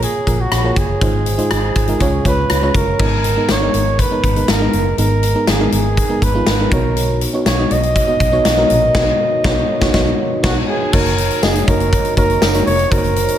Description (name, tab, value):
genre	1980s-style pop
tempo	121 BPM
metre	4/4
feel	straight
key	unclear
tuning	A4 = 439 Hz
part	warm flugelhorn	melody	0.0-13.4 s	F#4 to D#5	-19 LUFS	right 1 dB	tube saturation, ping-pong delay
part	FM electric piano	accompaniment	0.0-13.4 s	G#2 to D#5	-20 LUFS	right 1 dB	chorus
part	vintage muted fingered electric bass	bass	0.0-13.3 s	E#1 to C#2	-19 LUFS	equal	none
part	big rock drum kit	drums	0.0-13.4 s	crash cymbal, hi-hat, kick drum, rim click, snare drum, tambourine	-17 LUFS	left 1 dB	gated reverb
room	light reverb, small room ambience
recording	none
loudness	-13 LUFS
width	side -10 dB against mid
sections	0.0-3.0 A section; 3.0-10.9 B section; 10.9-13.4 C section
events	band accent 8.9-10.9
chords	0.0 A#m7; 1.0 G#6; 2.0 C#; 3.0 G#madd9; 6.7 Badd9; 10.9 F#6